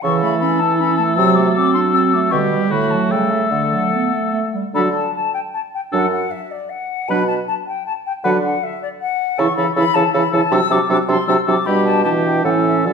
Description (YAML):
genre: quick classical-period movement for wind quintet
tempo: 156 BPM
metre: 3/4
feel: rubato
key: D major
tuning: A4 = 440 Hz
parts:
  - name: concert flute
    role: melody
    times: 0.0-12.9 s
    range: D5 to E6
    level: -21 LUFS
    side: left 8 dB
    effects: none
  - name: warm oboe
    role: second line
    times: 0.0-12.9 s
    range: F#4 to B4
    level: -22 LUFS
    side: left 4 dB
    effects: none
  - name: mellow French horn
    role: accompaniment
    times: 0.0-12.9 s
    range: E3 to A3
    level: -21 LUFS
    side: right 1 dB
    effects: none
  - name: mellow clarinet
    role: accompaniment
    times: 0.0-12.9 s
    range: D3 to E4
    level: -21 LUFS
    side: right 7 dB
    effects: none
  - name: clear bassoon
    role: bass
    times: 0.0-12.9 s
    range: F#2 to D3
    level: -21 LUFS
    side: right 3 dB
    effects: none
room: wet recital hall reverb, RT60 1.4 s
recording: none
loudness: -15 LUFS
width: side -6 dB against mid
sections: 0.0-4.7 A section; 4.7-12.9 A section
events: none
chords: 0.0 A/C#; 1.2 D7/C; 2.3 G/B; 2.7 D/A; 3.1 A7/C#; 3.5 D; 4.7 D5; 5.9 N.C.; 7.1 Bm; 8.2 Bm/D (rootless); 9.4 A/C#; 10.5 D7/C; 11.7 G/B; 12.1 Em7/B; 12.5 A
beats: | 0.04 0.42 0.80 | 1.18 1.56 1.94 | 2.32 2.71 3.10 | 3.51 3.92 4.34 | 4.74 5.14 5.53 | 5.93 6.32 6.70 | 7.09 7.48 7.86 | 8.25 8.63 9.02 | 9.39 9.77 10.14 | 10.52 10.90 11.28 | 11.67 12.06 12.45 | 12.87